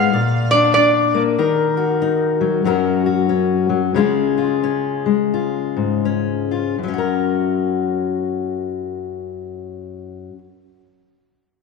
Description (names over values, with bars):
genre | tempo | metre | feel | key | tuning
acoustic folk duo or small band | 79-96 BPM | 4/4 | swing 62% on 8ths | F# major | A4 = 440 Hz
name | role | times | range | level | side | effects
metal-body resonator slide guitar | melody | 0.0-1.2 s | D5 to E#5 | -16 LUFS | right 2 dB | none
fingerpicked steel-string acoustic guitar | accompaniment | 0.0-10.5 s | F#2 to D5 | -18 LUFS | left 6 dB | none
room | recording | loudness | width
wet echo chamber reverb, RT60 2.1 s | 1960s-style stereo | -16 LUFS | side -4 dB against mid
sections
0.0-6.8 A section; 6.8-9.8 B section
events
slowing down 1.4-6.8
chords
0.1 A#; 1.4 D#m; 2.6 F#; 3.9 C#; 6.8 F#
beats
0.12 0.74 | 1.37 2.00 2.63 3.28 | 3.94 4.61 5.31 6.03 | 6.78 7.54 8.30 9.06